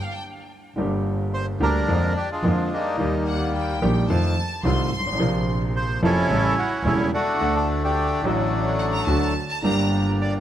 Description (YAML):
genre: tango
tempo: 108 BPM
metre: 4/4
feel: rubato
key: unclear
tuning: A4 = 440 Hz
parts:
  - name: bright studio violin section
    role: second line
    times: 0.0-10.0 s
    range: F5 to C6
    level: -30 LUFS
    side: equal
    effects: analog delay
  - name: warm concert grand piano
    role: accompaniment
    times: 0.8-10.4 s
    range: E1 to F#5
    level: -24 LUFS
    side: equal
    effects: none
  - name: rich double bass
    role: bass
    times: 0.8-10.4 s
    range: E1 to F2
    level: -25 LUFS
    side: equal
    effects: none
  - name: bandoneon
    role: melody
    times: 1.3-10.3 s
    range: F#3 to D5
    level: -24 LUFS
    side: equal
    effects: none
  - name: bandoneon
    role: stabs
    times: 9.6-10.4 s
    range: Bb3 to G4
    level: -36 LUFS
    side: right 1 dB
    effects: none
room: light reverb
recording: none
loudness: -20 LUFS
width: side -11 dB against mid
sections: 0.8-10.4 A section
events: none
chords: 0.0 N.C.; 0.8 Gm; 1.9 Bb7/F; 3.0 Eb; 4.1 F7; 5.2 Bbsus2; 6.3 A7; 7.4 D; 9.6 Gm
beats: 0.21 | 0.77 1.33 1.88 2.44 | 2.99 3.55 4.10 4.65 | 5.20 5.75 6.30 6.85 | 7.40 7.96 8.52 9.08 | 9.64 10.20